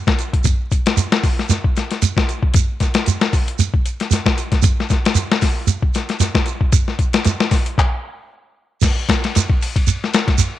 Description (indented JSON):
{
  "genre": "afrobeat",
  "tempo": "115 BPM",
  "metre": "4/4",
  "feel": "swing 55% on 16ths",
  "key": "none",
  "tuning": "none",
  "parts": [
    { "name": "boom bap sampler-style drum kit", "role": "drums", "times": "0.1-10.5 s", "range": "crash cymbal, handclaps, hi-hat, kick drum, ride cymbal, snare drum", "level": "-16 LUFS", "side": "left 2 dB", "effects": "none" },
    { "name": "shekere", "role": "percussion", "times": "0.2-10.5 s", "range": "none", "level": "-17 LUFS", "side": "right 4 dB", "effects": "none" }
  ],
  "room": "light reverb, digital ambience",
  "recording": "1960s-style stereo",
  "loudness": "-15 LUFS",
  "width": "side -13 dB against mid",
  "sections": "0.0-8.8 A section; 8.8-10.6 B section",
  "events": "stop 7.8-8.8",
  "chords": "none",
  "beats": "| 0.45 0.97 1.50 2.02 | 2.54 3.07 3.59 4.12 | 4.64 5.16 5.68 6.21 | 6.73 7.25 7.78 8.30 | 8.82 9.34 9.87 10.39"
}